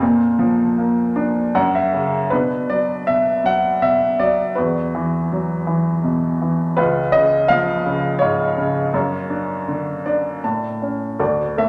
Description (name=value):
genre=classical, lyrical solo piano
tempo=75-85 BPM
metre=3/4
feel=rubato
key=B minor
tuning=A4 = 445 Hz
part: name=clear upright piano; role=solo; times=0.0-11.7 s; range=C#2 to A5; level=-19 LUFS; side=equal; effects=none
room=wet scoring stage reverb, RT60 1.5 s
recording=none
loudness=-19 LUFS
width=mono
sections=0.0-2.3 A section; 2.3-11.2 B section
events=upright piano fill 1.1-2.3, 9.7-11.2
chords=0.0 Bb; 1.5 Gb5; 2.3 Bm; 4.6 Esus2; 6.8 C#; 8.9 Dmmaj7; 10.4 A